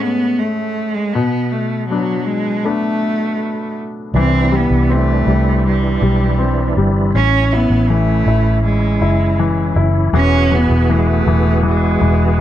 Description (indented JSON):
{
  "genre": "pop ballad",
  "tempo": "80 BPM",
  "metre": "4/4",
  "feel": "straight",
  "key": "A major",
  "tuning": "A4 = 439 Hz",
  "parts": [
    { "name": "clear cello", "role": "melody", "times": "0.0-12.4 s", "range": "F#3 to C#4", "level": "-18 LUFS", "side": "right 2 dB", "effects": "slapback echo" },
    { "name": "clear baby grand piano", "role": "accompaniment", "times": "0.0-12.4 s", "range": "A2 to G#4", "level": "-19 LUFS", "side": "left 6 dB", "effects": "none" },
    { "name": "bright tonewheel organ", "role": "sustained chords", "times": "4.1-12.4 s", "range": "E3 to G#4", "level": "-22 LUFS", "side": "right 3 dB", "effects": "chorus vibrato, fast rotary speaker" },
    { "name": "vintage muted fingered electric bass", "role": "bass", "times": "4.1-12.4 s", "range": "E1 to C2", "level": "-15 LUFS", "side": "equal", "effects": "none" }
  ],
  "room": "light reverb",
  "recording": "dry, close 1970s-style studio recording",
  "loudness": "-13 LUFS",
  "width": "side -12 dB against mid",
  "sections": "0.0-4.1 A section; 4.1-12.4 B section",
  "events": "none",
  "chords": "0.0 Amaj7; 1.1 Bm7; 4.1 C6; 7.1 A; 10.1 E"
}